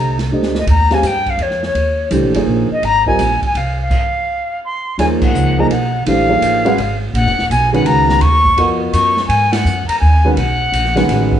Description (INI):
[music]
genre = modal jazz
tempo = 167 BPM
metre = 3/4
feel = swing 66% on 8ths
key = Eb minor from 5.0 s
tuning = A4 = 437 Hz
[part]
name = silver concert flute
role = melody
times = 0.0-11.3 s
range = Db5 to Db6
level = -16 LUFS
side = left 1 dB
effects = none
[part]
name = dark baby grand piano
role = accompaniment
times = 0.0-11.4 s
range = D3 to F5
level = -17 LUFS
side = right 1 dB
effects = none
[part]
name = upright bass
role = bass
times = 0.0-11.4 s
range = Eb1 to Ab2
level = -17 LUFS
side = equal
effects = none
[part]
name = open jazz drum kit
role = drums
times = 0.2-11.4 s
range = crash cymbal, hi-hat, kick drum, ride cymbal, snare drum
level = -22 LUFS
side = right 1 dB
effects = none
[sound]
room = moderate large studio reverb, RT60 1.1 s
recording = band playing live in one room, nothing above 11.0 kHz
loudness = -12 LUFS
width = side -10 dB against mid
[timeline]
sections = 0.0-5.0 A section; 5.0-11.4 B section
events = drum fill 0.3-0.7; stop 3.9-5.0; band accent 5.2, 9.5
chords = 0.0 F9sus4 (rootless); 0.7 Eb13sus4; 5.0 Ebm11; 9.3 Abm11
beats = 0.31 | 0.67 1.03 1.39 | 1.75 2.11 2.47 | 2.83 3.19 3.55 | 3.91 4.27 4.63 | 4.99 5.35 5.71 | 6.07 6.43 6.78 | 7.14 7.50 7.86 | 8.22 8.58 8.94 | 9.30 9.65 10.01 | 10.37 10.73 11.09